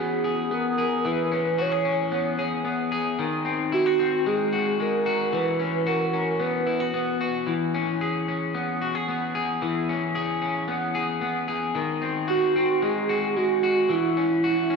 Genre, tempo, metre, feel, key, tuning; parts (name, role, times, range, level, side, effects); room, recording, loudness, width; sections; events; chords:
dream pop; 112 BPM; 4/4; straight; A4 = 440 Hz
warm velvety synth lead; melody; 0.0-7.2, 12.3-14.8 s; E4 to C#5; -24 LUFS; right 3 dB; chorus, tape echo
electric guitar at the edge of break-up; arpeggios; 0.0-14.8 s; D#3 to G#4; -25 LUFS; left 3 dB; lush chorus, tape echo
wet concert hall reverb, RT60 2.1 s; -22 LUFS; side -4 dB against mid
0.0-14.8 A section
0.0 E6; 1.0 C#m7; 3.2 G#7; 5.3 F#7sus4; 7.5 E6; 9.6 C#m7; 11.8 G#7; 13.9 F#7(no3)